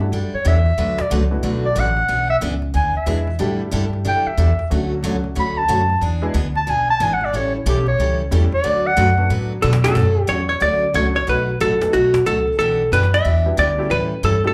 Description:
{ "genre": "country, western swing", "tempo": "183 BPM", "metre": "4/4", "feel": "swing 64% on 8ths", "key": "D major", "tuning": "A4 = 440 Hz", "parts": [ { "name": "mellow clarinet", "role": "second line", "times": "0.0-9.3 s", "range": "E4 to B5", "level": "-22 LUFS", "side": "equal", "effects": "slapback echo" }, { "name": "honky-tonk upright piano", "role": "accompaniment", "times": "0.0-14.5 s", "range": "F#3 to A4", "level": "-30 LUFS", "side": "equal", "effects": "none" }, { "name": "upright bass", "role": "bass", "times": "0.0-14.5 s", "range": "G#1 to B2", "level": "-22 LUFS", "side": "equal", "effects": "none" }, { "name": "cajon", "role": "drums", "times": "0.0-14.5 s", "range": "none", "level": "-32 LUFS", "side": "equal", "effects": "none" }, { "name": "picked steel-string acoustic guitar", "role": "accompaniment", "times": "0.1-14.4 s", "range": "B2 to B4", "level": "-27 LUFS", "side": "equal", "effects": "none" }, { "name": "vintage hollow-body jazz guitar", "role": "melody", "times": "9.6-14.5 s", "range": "F#4 to E5", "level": "-20 LUFS", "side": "equal", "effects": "slapback echo" } ], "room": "light reverb, studio reverb", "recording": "live gig heard through the venue's PA, club reverb", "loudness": "-18 LUFS", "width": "mono", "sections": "0.0-10.0 A section; 10.0-14.5 B section", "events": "clarinet solo 0.0-10.0; drum fill 9.6-10.0", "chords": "0.0 A7sus4; 0.8 D69; 2.1 E7; 3.4 A7sus4; 4.7 Dmaj7; 6.0 E7; 7.3 A7; 8.6 D6; 10.0 Dmaj7; 11.3 B7; 12.6 Em7/B; 13.9 A7" }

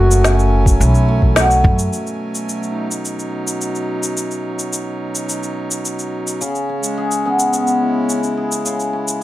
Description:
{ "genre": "folktronica", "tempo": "107 BPM", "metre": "4/4", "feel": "straight", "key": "unclear", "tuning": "A4 = 441 Hz", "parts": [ { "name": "breathy flugelhorn", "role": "melody", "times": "0.0-1.3 s", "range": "F#4", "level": "-21 LUFS", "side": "equal", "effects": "ping-pong delay" }, { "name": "hand-pumped harmonium", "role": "sustained chords", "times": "0.0-9.2 s", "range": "B2 to G#5", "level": "-22 LUFS", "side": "right 2 dB", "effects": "none" }, { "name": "cimbalom", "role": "arpeggios", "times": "0.0-9.2 s", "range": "F#2 to G#4", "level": "-20 LUFS", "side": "left 2 dB", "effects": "ping-pong delay" }, { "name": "upright bass", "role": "bass", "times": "0.0-1.9 s", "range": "F#1 to F#2", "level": "-14 LUFS", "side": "equal", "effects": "none" }, { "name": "electronic cabasa and snare drum", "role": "drums", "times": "0.1-9.2 s", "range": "none", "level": "-21 LUFS", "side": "equal", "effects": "overdrive" }, { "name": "electronic kick drum", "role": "drums", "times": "0.7-1.8 s", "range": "none", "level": "-14 LUFS", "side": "equal", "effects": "overdrive" } ], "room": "light reverb", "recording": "none", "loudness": "-15 LUFS", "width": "side -15 dB against mid", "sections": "0.0-1.9 A section; 1.9-9.2 B section", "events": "band accent 1.4", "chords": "0.0 F#m7; 1.9 B; 6.4 C#m7" }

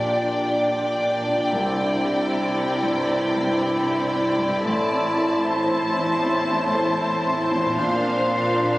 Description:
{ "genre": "cinematic", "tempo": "77 BPM", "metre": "4/4", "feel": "rubato", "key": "unclear", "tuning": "A4 = 440 Hz", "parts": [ { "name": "rich studio violin section", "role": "melody", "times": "0.0-8.8 s", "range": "F5 to A5", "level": "-29 LUFS", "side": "left 1 dB", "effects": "none" }, { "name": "mellow clarinet", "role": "second line", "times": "0.0-8.8 s", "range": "D4 to E4", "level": "-31 LUFS", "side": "equal", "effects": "none" }, { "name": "mellow cor anglais", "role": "second line", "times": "0.0-8.8 s", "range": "C5 to D5", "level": "-27 LUFS", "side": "equal", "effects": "none" }, { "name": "mellow hollow silver concert flute", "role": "second line", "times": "0.0-8.8 s", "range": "E5 to G5", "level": "-32 LUFS", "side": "equal", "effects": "none" }, { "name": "warm studio violin section", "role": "second line", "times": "0.0-8.8 s", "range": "C5 to D5", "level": "-29 LUFS", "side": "equal", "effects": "none" }, { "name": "rich studio viola section", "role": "accompaniment", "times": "0.0-8.8 s", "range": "D4 to E4", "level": "-28 LUFS", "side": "equal", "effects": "none" }, { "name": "warm concert grand piano", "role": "accompaniment", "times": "0.0-8.8 s", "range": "A1 to E5", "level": "-28 LUFS", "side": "left 1 dB", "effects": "none" }, { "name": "mellow French horn section", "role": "sustained chords", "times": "0.0-8.8 s", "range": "C4 to G4", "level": "-31 LUFS", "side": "equal", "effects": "none" }, { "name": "concert harp", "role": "arpeggios", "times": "0.0-8.8 s", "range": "A2 to E5", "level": "-34 LUFS", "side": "left 2 dB", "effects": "none" }, { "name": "rich studio double bass section", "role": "bass", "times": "0.0-8.8 s", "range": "A1 to C2", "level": "-35 LUFS", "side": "right 1 dB", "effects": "none" }, { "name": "warm studio cello section", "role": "bass", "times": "0.0-8.8 s", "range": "A2 to C3", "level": "-29 LUFS", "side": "right 1 dB", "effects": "none" } ], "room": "moderate scoring stage reverb, RT60 1.8 s", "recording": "recorded on a phone in the room, studio reverb, compression", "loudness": "-19 LUFS", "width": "side -18 dB against mid", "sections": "0.0-8.8 A section", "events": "none", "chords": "0.0 Gm/Bb; 1.5 Cadd9; 4.7 Am; 7.8 Bbadd9" }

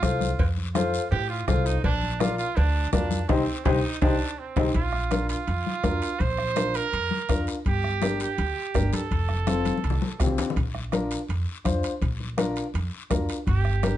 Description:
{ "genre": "latin, cumbia", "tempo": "165 BPM", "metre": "4/4", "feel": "straight", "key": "Bb major", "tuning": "A4 = 440 Hz", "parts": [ { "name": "clear trumpet", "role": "second line", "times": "0.0-10.4, 13.5-14.0 s", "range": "C4 to C5", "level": "-30 LUFS", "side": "right 6 dB", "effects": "none" }, { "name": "dark upright piano", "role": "accompaniment", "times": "0.0-14.0 s", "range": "C4 to D5", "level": "-28 LUFS", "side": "left 3 dB", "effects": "none" }, { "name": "upright bass", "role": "bass", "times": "0.0-14.0 s", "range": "F1 to A2", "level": "-27 LUFS", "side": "right 1 dB", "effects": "none" }, { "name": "bombo", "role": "percussion", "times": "0.0-14.0 s", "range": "none", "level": "-28 LUFS", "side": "left 1 dB", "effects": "none" }, { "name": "congas", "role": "percussion", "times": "0.0-14.0 s", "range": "none", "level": "-31 LUFS", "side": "left 4 dB", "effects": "none" }, { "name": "guiro", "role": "percussion", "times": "0.0-14.0 s", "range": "none", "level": "-41 LUFS", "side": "left 6 dB", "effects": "none" }, { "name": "cowbell and timbales", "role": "percussion", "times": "0.4-14.0 s", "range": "none", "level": "-36 LUFS", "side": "right 6 dB", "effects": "none" } ], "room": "moderate studio reverb, RT60 0.8 s", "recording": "nothing above 10.8 kHz", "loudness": "-23 LUFS", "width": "side -12 dB against mid", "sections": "0.0-4.7 A section; 4.7-14.0 B section", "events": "band accent 3.3-4.7; drum fill 4.0-4.7, 9.7-10.6; trumpet solo 4.7-14.0", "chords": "0.0 F; 1.8 Bb; 3.3 Cm; 4.7 Bb; 7.7 Gm; 9.1 F; 10.6 Bb; 13.5 Gm" }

